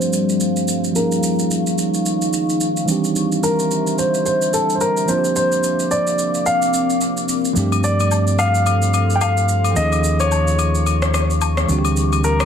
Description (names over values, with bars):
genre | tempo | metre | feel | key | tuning
amapiano | 109 BPM | 4/4 | swing 58% on 16ths | G minor | A4 = 440 Hz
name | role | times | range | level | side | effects
warm concert grand piano | melody | 0.0-12.4 s | A4 to G5 | -20 LUFS | left 1 dB | low-pass filter, ping-pong delay
bell-like tine electric piano | accompaniment | 0.0-12.4 s | E3 to Ab4 | -22 LUFS | right 5 dB | low-pass filter
deep dark ambient pad | sustained chords | 0.0-12.4 s | G3 to D6 | -23 LUFS | left 2 dB | chorus, built-in reverb, low-pass filter
electronic shaker and rim click | drums | 0.0-12.4 s | none | -26 LUFS | right 2 dB | none
fingered electric bass | bass | 7.6-12.4 s | D2 to G2 | -18 LUFS | left 1 dB | none
agogo bells and woodblock | percussion | 7.7-12.4 s | none | -25 LUFS | left 14 dB | none
room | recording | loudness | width
light reverb, digital ambience | dense, heavily limited modern master | -16 LUFS | side -8 dB against mid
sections
0.0-12.4 A section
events
filter sweep 0.0-12.4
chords
0.0 G9sus4; 1.0 Eb9sus4; 2.9 D9sus4; 5.1 C9sus4; 7.6 G9sus4; 9.8 Eb9sus4; 11.7 D9sus4